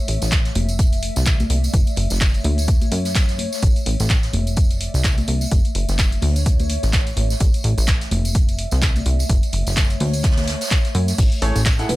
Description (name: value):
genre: piano house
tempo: 127 BPM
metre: 4/4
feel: swing 57% on 16ths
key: A major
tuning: A4 = 440 Hz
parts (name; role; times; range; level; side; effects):
- warbly tape-like pad; texture; 0.0-12.0 s; A3 to E5; -30 LUFS; equal; chorus, built-in reverb, sidechain pumping
- plucky analog bass; bass; 0.1-12.0 s; F1 to F#2; -20 LUFS; equal; sidechain pumping
- punchy analog drum machine; drums; 0.1-12.0 s; crash cymbal, handclaps, hi-hat; -26 LUFS; equal; none
- unplugged drum kit; drums; 0.1-12.0 s; hi-hat, snare drum; -34 LUFS; right 2 dB; sidechain pumping on hats, high-pass filter on hats, high-pass filter on snare, high-pass filter on room
- tambourine and congas; percussion; 0.2-12.0 s; none; -29 LUFS; left 1 dB; none
- electronic kick drum; drums; 0.3-11.8 s; none; -18 LUFS; equal; none
- clear grand piano; riff; 11.4-11.9 s; A3 to F#5; -24 LUFS; equal; sidechain pumping, tape echo
- marimba with soft mallets; melody; 11.9-12.0 s; B4; -22 LUFS; equal; none
room: small room ambience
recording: none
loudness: -16 LUFS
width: side -18 dB against mid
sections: 0.0-12.0 A section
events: none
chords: 0.0 A; 0.6 F; 1.7 F#m7; 2.7 Dmaj7; 3.6 A; 4.3 F; 5.5 F#m7; 6.5 D5; 7.4 A; 8.1 F; 9.3 F#m7; 10.2 Dmaj7; 11.2 Amaj7